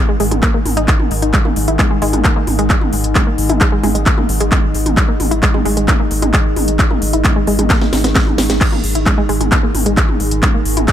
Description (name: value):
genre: driving peak-time techno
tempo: 132 BPM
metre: 4/4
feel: straight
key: unclear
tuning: A4 = 439 Hz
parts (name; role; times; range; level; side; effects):
- metallic inharmonic drone; drone; 0.1-10.9 s; G#2 to D#3; -24 LUFS; left 3 dB; chorus, built-in reverb, sidechain pumping
- warbly tape-like pad; texture; 0.1-10.9 s; D#4 to G#5; -25 LUFS; right 3 dB; chorus, built-in reverb, sidechain pumping
- wide unison pluck; riff; 0.1-10.9 s; G#3 to E4; -20 LUFS; left 1 dB; tube saturation, sidechain pumping, ping-pong delay
- saturated sub bass; bass; 0.2-10.9 s; G#1; -19 LUFS; equal; sidechain pumping, low-pass filter
- techno drum kit; drums; 0.2-10.9 s; crash cymbal, handclaps, hi-hat, snare drum, toms; -18 LUFS; equal; none
- electronic kick drum; drums; 0.4-10.9 s; none; -15 LUFS; equal; none
room: little or no reverb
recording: none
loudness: -12 LUFS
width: side -10 dB against mid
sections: 0.0-10.9 A section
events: fade-in on ambient pad 0.0-10.9; drum fill 7.7-8.6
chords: 0.0 G#5